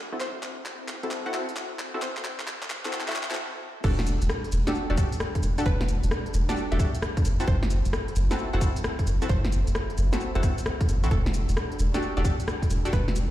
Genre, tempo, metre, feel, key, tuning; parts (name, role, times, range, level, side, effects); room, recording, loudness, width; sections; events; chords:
UK garage, two-step garage; 132 BPM; 4/4; swing 66% on 16ths; E minor; A4 = 440 Hz
soft string machine; sustained chords; 0.0-13.3 s; G3 to F#5; -40 LUFS; equal; ensemble chorus, vintage 12-bit sampler grit, sidechain pumping
soft dub sub bass; bass; 0.0-13.3 s; E1 to C2; -25 LUFS; equal; high-pass filter
punchy chord stab; stabs; 0.1-12.9 s; C4 to A4; -33 LUFS; equal; chorus, cassette tape, ping-pong delay
string-like resonator pluck; melody; 0.2-13.1 s; A4 to F#5; -40 LUFS; equal; chorus, ping-pong delay
garage drum kit; drums; 0.2-13.3 s; crash cymbal, handclaps, hi-hat, rim click, shaker, snare drum; -32 LUFS; equal; high-pass filter on hats, high-pass filter on snare, high-pass filter on cymbals, high-pass filter on perc, high-pass filter on room
electronic kick drum; drums; 3.8-13.0 s; -26 LUFS; equal
light reverb; played on a big sound system in a bare room, large studio reverb, high-pass filter; -24 LUFS; side -14 dB against mid
0.0-3.8 A section; 3.8-13.3 B section
build-up 0.0-3.8; drum fill 0.0-3.4; filter sweep on synth stab 0.0-3.8; stop 3.4-3.8; drop 3.8-13.3
0.0 F#m7b5; 3.8 Em11; 7.2 F#m7b5; 11.1 Em11